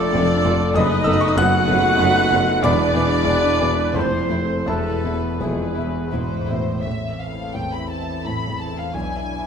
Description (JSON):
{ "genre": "classical", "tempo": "79-98 BPM", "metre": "3/4", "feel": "rubato", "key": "unclear", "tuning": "A4 = 440 Hz", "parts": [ { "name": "warm concert grand piano", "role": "melody", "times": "0.0-9.5 s", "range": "E1 to F#6", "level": "-22 LUFS", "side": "left 1 dB", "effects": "none" }, { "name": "bright concert flute", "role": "second line", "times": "0.0-6.1 s", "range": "G#5 to F#6", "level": "-29 LUFS", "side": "left 2 dB", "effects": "none" }, { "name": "mellow clarinet", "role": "second line", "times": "0.0-6.1 s", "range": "G#4 to F#5", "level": "-28 LUFS", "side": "right 1 dB", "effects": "none" }, { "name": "mellow cor anglais", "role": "second line", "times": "0.0-6.1 s", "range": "G#4 to F#5", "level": "-25 LUFS", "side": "right 4 dB", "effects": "none" }, { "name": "muted chamber violin section", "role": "second line", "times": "0.0-9.5 s", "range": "E4 to F#5", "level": "-28 LUFS", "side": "left 2 dB", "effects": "none" }, { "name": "muted chamber viola section", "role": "accompaniment", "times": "0.0-9.5 s", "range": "G#3 to F#4", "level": "-28 LUFS", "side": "right 4 dB", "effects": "none" }, { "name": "mellow French horn section", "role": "sustained chords", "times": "0.0-9.5 s", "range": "E3 to F4", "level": "-29 LUFS", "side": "equal", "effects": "none" }, { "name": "clear trumpet section", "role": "stabs", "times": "0.0-6.5 s", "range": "A4 to C5", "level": "-29 LUFS", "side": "equal", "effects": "none" }, { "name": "mellow tuba", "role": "bass", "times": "0.1-6.6 s", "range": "E1 to F#1", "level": "-31 LUFS", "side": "right 3 dB", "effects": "none" }, { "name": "muted chamber cello section", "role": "bass", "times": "0.1-9.5 s", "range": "E2 to B2", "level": "-31 LUFS", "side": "right 2 dB", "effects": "none" }, { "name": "muted studio double bass section", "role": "bass", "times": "0.1-9.5 s", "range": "E1 to B1", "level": "-30 LUFS", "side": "right 2 dB", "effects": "none" }, { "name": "muted studio violin section", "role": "melody", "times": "0.2-9.5 s", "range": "E4 to B5", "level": "-32 LUFS", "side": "left 4 dB", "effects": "none" } ], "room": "wet scoring stage reverb, RT60 1.6 s", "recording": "minimal, uncompressed stereo recording", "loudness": "-17 LUFS", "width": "side -7 dB against mid", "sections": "0.0-6.9 A section; 6.9-9.5 B section", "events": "none", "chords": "0.0 Dm/F; 0.8 B7/F#; 2.6 E; 4.0 Fmaj7; 4.7 E; 6.9 Am; 8.9 E7/B", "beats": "0.14 | 0.76 1.38 2.00 | 2.64 3.28 3.95 | 4.67 5.41 6.12 | 6.85 7.56 8.25 | 8.94" }